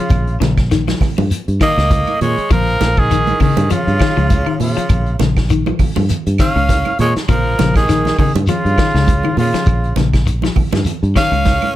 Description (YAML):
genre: afrobeat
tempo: 100 BPM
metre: 4/4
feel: swing 56% on 16ths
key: Bb dorian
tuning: A4 = 440 Hz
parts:
  - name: warm trumpet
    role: melody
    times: 0.0-11.7 s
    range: F4 to F5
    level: -19 LUFS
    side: equal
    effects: none
  - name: raspy tenor saxophone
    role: second line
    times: 0.0-11.7 s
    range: Db3 to Db4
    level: -23 LUFS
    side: right 4 dB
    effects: none
  - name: clean electric guitar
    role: arpeggios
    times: 0.0-11.6 s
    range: Db3 to F3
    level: -20 LUFS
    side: left 7 dB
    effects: none
  - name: fingered electric bass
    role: bass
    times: 0.1-11.6 s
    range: Bb1 to Bb2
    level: -17 LUFS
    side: equal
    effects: none
  - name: vintage brush drum kit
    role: drums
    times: 0.1-11.6 s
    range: hi-hat, kick drum, snare drum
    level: -18 LUFS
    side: equal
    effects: none
  - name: claves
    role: percussion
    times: 0.1-11.8 s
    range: none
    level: -33 LUFS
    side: right 16 dB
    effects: none
  - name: congas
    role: percussion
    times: 0.1-11.8 s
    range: none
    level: -23 LUFS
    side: right 9 dB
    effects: none
  - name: shekere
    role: percussion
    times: 0.1-11.6 s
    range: none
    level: -18 LUFS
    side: left 1 dB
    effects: none
room: light reverb, small room ambience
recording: none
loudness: -12 LUFS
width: side -14 dB against mid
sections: 0.0-11.8 A section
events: none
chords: 0.0 Bbm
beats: | 0.11 0.71 1.31 1.91 | 2.50 3.10 3.70 4.30 | 4.90 5.49 6.09 6.69 | 7.28 7.88 8.48 9.07 | 9.67 10.27 10.87 11.46